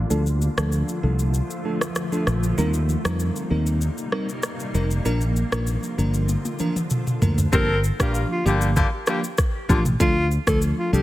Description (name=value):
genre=afrobeats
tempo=97 BPM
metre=4/4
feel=straight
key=G minor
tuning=A4 = 438 Hz
part: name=granular cloud pad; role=sustained chords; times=0.0-7.5 s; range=C3 to F4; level=-31 LUFS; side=left 1 dB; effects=built-in reverb, low-pass filter
part: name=fingered electric bass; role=bass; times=0.0-11.0 s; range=F1 to F2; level=-22 LUFS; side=equal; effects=none
part: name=bell-like FM electric piano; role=accompaniment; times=0.1-11.0 s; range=F3 to Bb4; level=-27 LUFS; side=equal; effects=chorus, tremolo, low-pass filter
part: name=afro-pop drum kit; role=drums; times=0.1-11.0 s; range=kick drum, rim click, shaker, toms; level=-25 LUFS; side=equal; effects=none
part: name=breathy alto saxophone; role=melody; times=7.5-11.0 s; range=F4 to Bb4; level=-26 LUFS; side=equal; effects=tape echo
part: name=clear horn section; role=second line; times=7.5-9.8 s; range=D3 to A5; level=-27 LUFS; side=left 4 dB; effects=none
room=digital ambience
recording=heavily compressed radio sound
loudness=-20 LUFS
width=side -16 dB against mid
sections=0.0-7.5 A section; 7.5-11.0 B section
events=filter sweep 0.0-7.5; drum fill 6.3-7.5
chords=0.1 Dm; 2.6 Eb6; 5.1 Bb; 7.5 Gm7; 10.0 Dm